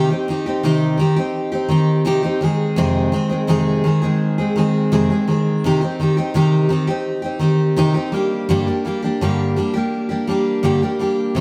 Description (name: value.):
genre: pop.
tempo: 84 BPM.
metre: 4/4.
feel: straight.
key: C minor.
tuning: A4 = 438 Hz.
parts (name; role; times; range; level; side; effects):
picked steel-string acoustic guitar; solo; 0.0-11.4 s; F2 to Ab4; -18 LUFS; equal; none.
room: moderate plate reverb, RT60 2.5 s.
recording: heard from further back in the room.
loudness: -18 LUFS.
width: mono.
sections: 0.0-11.4 A section.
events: none.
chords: 0.0 Cm; 2.4 Fm7; 5.6 Cm; 8.1 Gm.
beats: 0.64 1.35 2.07 | 2.78 3.49 4.21 4.92 | 5.63 6.35 7.06 7.77 | 8.49 9.20 9.91 10.63 | 11.34.